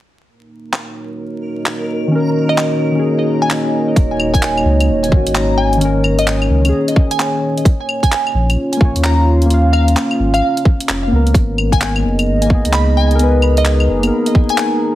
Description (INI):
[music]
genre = future garage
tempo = 130 BPM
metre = 4/4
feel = swing 64% on 16ths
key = unclear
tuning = A4 = 439 Hz
[part]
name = dark analog pad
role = sustained chords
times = 0.3-14.9 s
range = A#3 to A#5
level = -20 LUFS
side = right 1 dB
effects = chorus, vintage 12-bit sampler grit, sidechain pumping
[part]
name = backwards swelling texture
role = texture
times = 1.0-4.0 s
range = A#4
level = -28 LUFS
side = equal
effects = built-in reverb
[part]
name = garage drum kit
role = drums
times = 0.7-14.7 s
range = claves, handclaps, hi-hat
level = -21 LUFS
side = equal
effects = none
[part]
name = muted felt-like synth keys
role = accompaniment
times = 2.1-14.9 s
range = D#3 to E#5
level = -18 LUFS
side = left 2 dB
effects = chorus, vintage 12-bit sampler grit, sidechain pumping, tape echo
[part]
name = glassy wavetable pluck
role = melody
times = 2.5-14.9 s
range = D#5 to B5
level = -21 LUFS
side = equal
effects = chorus, tape echo
[part]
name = warm sub bass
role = bass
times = 4.0-14.1 s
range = D#1 to D#2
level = -15 LUFS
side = equal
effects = sidechain pumping
[part]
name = electronic kick drum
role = drums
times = 4.0-14.5 s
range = none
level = -12 LUFS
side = equal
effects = none
[sound]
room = light reverb, digital ambience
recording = heavily compressed radio sound, multiband compression, vinyl crackle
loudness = -12 LUFS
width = side -14 dB against mid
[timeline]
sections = 0.3-4.0 A section; 4.0-14.9 B section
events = none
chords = 0.3 D#m7; 7.7 A#m; 11.3 G#madd9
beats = | 0.27 0.73 1.19 1.66 | 2.12 2.58 3.04 3.50 | 3.96 4.42 4.89 5.35 | 5.81 6.27 6.73 7.19 | 7.66 8.12 8.58 9.04 | 9.50 9.96 10.43 10.89 | 11.35 11.81 12.27 12.73 | 13.19 13.65 14.12 14.58